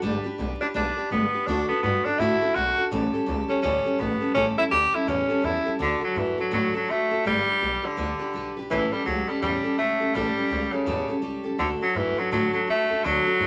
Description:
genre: rockabilly.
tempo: 166 BPM.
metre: 4/4.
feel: swing 62% on 8ths.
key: D major.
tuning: A4 = 440 Hz.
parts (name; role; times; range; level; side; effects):
picked steel-string acoustic guitar; accompaniment; 0.0-13.5 s; A2 to B4; -30 LUFS; equal; none.
upright bass; bass; 0.0-13.5 s; F#1 to A2; -33 LUFS; equal; none.
raspy tenor saxophone; melody; 0.6-13.5 s; C#3 to G4; -26 LUFS; equal; none.
room: moderate studio reverb, RT60 0.8 s.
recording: vinyl crackle.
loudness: -25 LUFS.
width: mono.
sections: 0.0-5.8 A section; 5.8-13.5 B section.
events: none.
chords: 0.0 G; 1.5 D; 2.9 A7; 5.8 D; 7.3 G; 8.7 A7; 11.6 D.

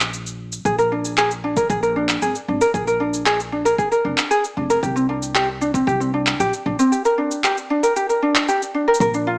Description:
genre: folktronica.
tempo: 115 BPM.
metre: 4/4.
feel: straight.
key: Bb mixolydian.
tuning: A4 = 440 Hz.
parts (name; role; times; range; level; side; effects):
upright bass; bass; 0.0-9.4 s; F1 to C2; -28 LUFS; equal; none.
electronic handclaps and shaker; drums; 0.0-9.2 s; none; -22 LUFS; equal; none.
ukulele; arpeggios; 0.7-9.4 s; C4 to Bb4; -18 LUFS; equal; digital delay.
electronic kick drum; drums; 0.7-9.1 s; none; -26 LUFS; equal; none.
room: light reverb.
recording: small speaker sound.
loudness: -17 LUFS.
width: side -33 dB against mid.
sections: 0.0-9.0 A section.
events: none.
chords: 0.0 N.C.; 0.7 Bb7; 4.8 Csus2; 6.9 Gm/D.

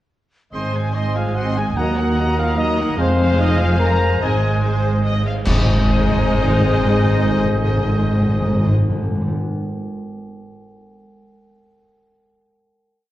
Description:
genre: cinematic, heroic adventure film score.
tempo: 146 BPM.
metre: 3/4.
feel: straight.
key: Ab mixolydian.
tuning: A4 = 441 Hz.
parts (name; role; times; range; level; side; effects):
rich symphonic violin section; melody; 0.5-8.7 s; C5 to C6; -29 LUFS; left 2 dB; none.
mellow clarinet; second line; 0.5-8.7 s; Bb4 to C5; -29 LUFS; left 2 dB; none.
rich studio violin section; second line; 0.5-8.7 s; Bb4 to Eb5; -31 LUFS; left 3 dB; none.
silver concert flute; second line; 0.5-8.7 s; Ab5 to Bb5; -31 LUFS; left 1 dB; none.
warm oboe; second line; 0.5-8.7 s; Eb5 to F5; -30 LUFS; right 1 dB; none.
rich symphonic viola section; accompaniment; 0.5-8.7 s; Gb3 to C4; -29 LUFS; equal; none.
dark trombone section; sustained chords; 0.5-8.7 s; Eb3 to C4; -28 LUFS; right 1 dB; none.
mellow French horn section; sustained chords; 0.5-8.7 s; C4 to Bb4; -26 LUFS; left 4 dB; none.
clear trumpet section; stabs; 0.5-8.7 s; Eb4 to Bb5; -26 LUFS; right 1 dB; none.
rich symphonic cello section; bass; 0.5-8.7 s; Eb2 to Ab2; -23 LUFS; right 1 dB; none.
warm symphonic double bass section; bass; 0.5-8.7 s; F1 to Eb2; -22 LUFS; right 1 dB; none.
timpani; percussion; 1.8-2.3, 5.5-9.4 s; Ab2 to Eb3; -21 LUFS; left 1 dB; none.
cymbal swell, clash cymbals and concert bass drum; percussion; 3.0-6.2 s; none; -22 LUFS; equal; none.
room: moderate scoring stage reverb, RT60 1.5 s.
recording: worn, warbling old tape, cassette tape, warbly pitch drift.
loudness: -15 LUFS.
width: side -14 dB against mid.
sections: 0.5-5.5 theme; 5.5-7.9 final chord.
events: band accent 5.5-5.9.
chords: 0.5 Ab; 1.8 Ebm; 3.0 Fm; 4.2 Ab.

